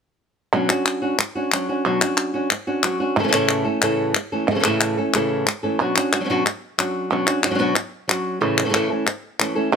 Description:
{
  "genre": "flamenco",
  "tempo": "183 BPM",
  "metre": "4/4",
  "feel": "straight",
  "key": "B minor",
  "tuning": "A4 = 439 Hz",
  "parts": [
    { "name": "flamenco guitar", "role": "melody", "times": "0.5-9.8 s", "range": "A2 to A4", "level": "-20 LUFS", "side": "equal", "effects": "none" },
    { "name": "palmas hand claps", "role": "percussion", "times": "0.5-9.8 s", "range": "none", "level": "-21 LUFS", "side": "left 1 dB", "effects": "none" }
  ],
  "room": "light reverb",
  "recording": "close, detailed microphones",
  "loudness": "-18 LUFS",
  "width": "side -6 dB against mid",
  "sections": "0.5-9.8 A section",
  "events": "none",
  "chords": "0.5 Bmadd9 (rootless); 3.2 A; 5.8 Bmadd9; 8.4 A",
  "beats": "| 0.53 0.86 1.19 1.52 | 1.85 2.18 2.51 2.84 | 3.17 3.50 3.82 4.15 | 4.48 4.81 5.14 5.47 | 5.79 6.12 6.45 6.78 | 7.10 7.43 7.76 8.08 | 8.41 8.74 9.07 9.39 | 9.72"
}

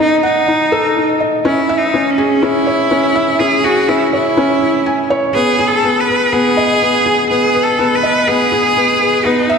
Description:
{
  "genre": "electronica",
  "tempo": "123 BPM",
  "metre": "4/4",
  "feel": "straight",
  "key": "unclear",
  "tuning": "A4 = 440 Hz",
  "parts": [
    { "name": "clear cello", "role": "melody", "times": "0.0-9.6 s", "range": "C#4 to B4", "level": "-14 LUFS", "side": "equal", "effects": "none" },
    { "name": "felt-muted upright piano", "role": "riff", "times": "0.0-9.6 s", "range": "B3 to G#5", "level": "-14 LUFS", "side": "equal", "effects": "tape echo" }
  ],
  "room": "wet concert hall reverb, RT60 1.8 s",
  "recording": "none",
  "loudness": "-11 LUFS",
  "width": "side -6 dB against mid",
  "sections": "0.0-9.6 A section",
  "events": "none",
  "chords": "0.0 D#dim; 1.4 C#m; 5.3 G#m",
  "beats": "0.47 0.96 | 1.45 1.94 2.42 2.91 | 3.40 3.89 4.37 4.86 | 5.35 5.84 6.33 6.81 | 7.30 7.79 8.28 8.76 | 9.25"
}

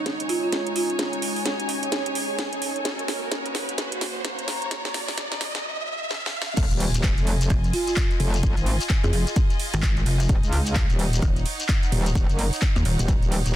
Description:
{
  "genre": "bass house",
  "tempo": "129 BPM",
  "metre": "4/4",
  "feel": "swing 60% on 16ths",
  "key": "F phrygian",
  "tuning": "A4 = 440 Hz",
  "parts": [
    { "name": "dark analog pad", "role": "sustained chords", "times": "0.0-6.5 s", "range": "Ab3 to Db5", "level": "-33 LUFS", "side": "right 2 dB", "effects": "chorus, sidechain pumping" },
    { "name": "riser and impact", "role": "sound effects", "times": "0.0-8.4 s", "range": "none", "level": "-33 LUFS", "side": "right 1 dB", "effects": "none" },
    { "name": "clear studio string section", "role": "texture", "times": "0.0-13.6 s", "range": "Eb4 to Bb5", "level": "-32 LUFS", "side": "equal", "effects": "sidechain pumping" },
    { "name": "house drum kit", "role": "drums", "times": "0.1-13.5 s", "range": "crash cymbal, handclaps, hi-hat, ride cymbal, snare drum", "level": "-29 LUFS", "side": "right 1 dB", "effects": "none" },
    { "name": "folk marimba with soft mallets", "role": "melody", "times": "0.3-1.4, 7.7-9.2 s", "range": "F4 to Ab4", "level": "-29 LUFS", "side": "right 2 dB", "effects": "ping-pong delay" },
    { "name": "metallic wobble bass", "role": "bass", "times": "6.6-13.6 s", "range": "Eb1 to Db2", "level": "-23 LUFS", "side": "equal", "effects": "chorus, tube saturation, sidechain pumping" },
    { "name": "electronic kick drum", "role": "drums", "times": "6.6-13.2 s", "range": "none", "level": "-22 LUFS", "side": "equal", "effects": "none" },
    { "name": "shekere", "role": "percussion", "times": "6.6-13.5 s", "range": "none", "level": "-35 LUFS", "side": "left 4 dB", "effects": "none" },
    { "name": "pulsing pluck wobble bass", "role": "bass", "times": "7.5-13.0 s", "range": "Eb1 to F2", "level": "-22 LUFS", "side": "equal", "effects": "chorus, tube saturation, sidechain pumping" }
  ],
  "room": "digital ambience",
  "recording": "dense, heavily limited modern master, high-pass filter",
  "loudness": "-21 LUFS",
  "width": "side -13 dB against mid",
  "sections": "0.0-6.6 A section; 6.6-13.6 B section",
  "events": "build-up 0.0-6.6; drum fill 0.0-5.6, 6.1-6.6; riser 0.0-6.6; filter sweep on analog synth pad 0.0-6.6; filter sweep 0.0-6.6; drop 6.6-13.6; impact 6.6-8.4",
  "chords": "0.0 Absus4; 2.9 Gb; 6.6 Fm7; 10.3 Ebm7",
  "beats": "0.06 0.53 | 0.99 1.46 1.92 2.39 | 2.85 3.32 3.78 4.25 | 4.71 5.18 5.64 6.11 | 6.57 7.04 7.50 7.97 | 8.43 8.90 9.36 9.83 | 10.29 10.76 11.22 11.69 | 12.15 12.62 13.08 13.55"
}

